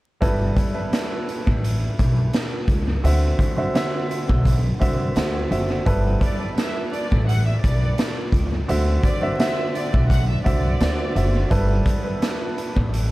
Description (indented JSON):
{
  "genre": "hip hop, boom-bap hip-hop",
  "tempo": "85 BPM",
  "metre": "4/4",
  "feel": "swing 55% on 16ths",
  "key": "G major",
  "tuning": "A4 = 440 Hz",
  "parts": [
    { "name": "warm upright piano", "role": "accompaniment", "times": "0.2-13.1 s", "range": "D3 to E5", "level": "-26 LUFS", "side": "right 1 dB", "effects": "cassette tape, high-pass filter, low-pass filter, analog delay" },
    { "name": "upright bass", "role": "bass", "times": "0.2-13.1 s", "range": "F#1 to D2", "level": "-21 LUFS", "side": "equal", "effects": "none" },
    { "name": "raw garage drum kit", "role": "drums", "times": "0.2-13.1 s", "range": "hi-hat, kick drum, snare drum", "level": "-22 LUFS", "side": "equal", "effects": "analog delay" },
    { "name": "rich studio violin section", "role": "melody", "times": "6.2-11.5 s", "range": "D5 to F#5", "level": "-31 LUFS", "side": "right 1 dB", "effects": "high-pass filter, low-pass filter, analog delay" }
  ],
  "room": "light reverb, small room ambience",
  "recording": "echo-heavy mix, vinyl crackle",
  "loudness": "-18 LUFS",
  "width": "side -18 dB against mid",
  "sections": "0.2-5.9 A section; 5.9-13.1 B section",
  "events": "none",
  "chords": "0.2 G69; 3.0 D9; 5.9 G69; 8.7 D9; 11.5 G69"
}